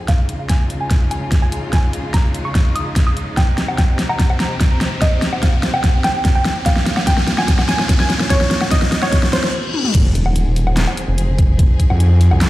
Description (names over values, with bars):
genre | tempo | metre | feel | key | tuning
heavy wobble dubstep | 146 BPM | 4/4 | half-time | F minor | A4 = 440 Hz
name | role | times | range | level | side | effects
rich chamber string section | sustained chords | 0.0-12.5 s | Bb2 to Ab4 | -26 LUFS | left 1 dB | sidechain pumping, low-pass filter
riser, reverse cymbal and impact | sound effects | 0.0-11.6 s | none | -29 LUFS | left 1 dB | none
wide unison pluck | melody | 0.1-9.5 s | C5 to Eb6 | -23 LUFS | right 1 dB | digital delay
dubstep drum kit | drums | 0.1-12.5 s | crash cymbal, handclaps, hi-hat, snare drum, toms, woodblock | -19 LUFS | equal | overdrive
electronic kick drum | drums | 0.1-11.9 s | none | -14 LUFS | equal | overdrive
wobble bass | bass | 9.9-12.5 s | F1 to F2 | -11 LUFS | equal | chorus, overdrive
vowel-sweep wobble bass | bass | 10.2-11.7 s | Eb1 to F1 | -16 LUFS | equal | chorus, overdrive
room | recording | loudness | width
light reverb, digital ambience | played on a big sound system in a bare room, large studio reverb | -14 LUFS | side -16 dB against mid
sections
0.0-9.9 A section; 9.9-12.5 B section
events
build-up 0.0-9.9; drum fill 0.0-9.5, 9.7; riser 0.0-9.5; filter sweep on synth pluck 0.0-9.9; reverse cymbal 9.1-9.9; stop 9.5-9.9; drop 9.9-12.5; impact 9.9-11.6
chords
0.1 Dbadd9; 3.4 Cm; 6.7 Bbm; 9.9 Fm7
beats
| 0.08 0.49 0.91 1.32 | 1.73 2.14 2.55 2.96 | 3.37 3.78 4.19 4.61 | 5.02 5.43 5.84 6.25 | 6.66 7.07 7.48 7.89 | 8.30 8.71 9.12 9.54 | 9.95 10.36 10.77 11.18 | 11.59 12.00 12.41